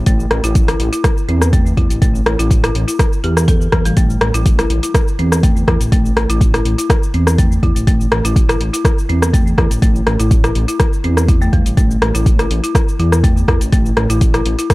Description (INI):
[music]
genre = afro house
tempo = 123 BPM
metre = 4/4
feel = swing 53% on 16ths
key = A minor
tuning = A4 = 441 Hz
[part]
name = dark detuned saw bass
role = bass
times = 0.0-14.6 s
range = A1 to E2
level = -16 LUFS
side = equal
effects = sidechain pumping
[part]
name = folk marimba with hard mallets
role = arpeggios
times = 0.1-14.7 s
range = E3 to A4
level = -21 LUFS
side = left 1 dB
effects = sidechain pumping, analog delay
[part]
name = deep house drum kit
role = drums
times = 0.1-14.7 s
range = cabasa, hi-hat, rim click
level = -19 LUFS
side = equal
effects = overdrive
[part]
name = electronic kick drum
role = drums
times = 0.1-14.7 s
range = none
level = -14 LUFS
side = equal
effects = overdrive
[sound]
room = little or no reverb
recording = dry, gritty hardware recording, transformer saturation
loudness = -12 LUFS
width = side -20 dB against mid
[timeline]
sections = 0.0-14.7 A section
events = none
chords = 0.0 A5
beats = | 0.07 0.55 1.04 1.53 | 2.02 2.51 2.99 3.48 | 3.97 4.46 4.95 5.43 | 5.92 6.41 6.90 7.38 | 7.87 8.36 8.85 9.34 | 9.82 10.31 10.80 11.29 | 11.77 12.26 12.75 13.24 | 13.72 14.21 14.70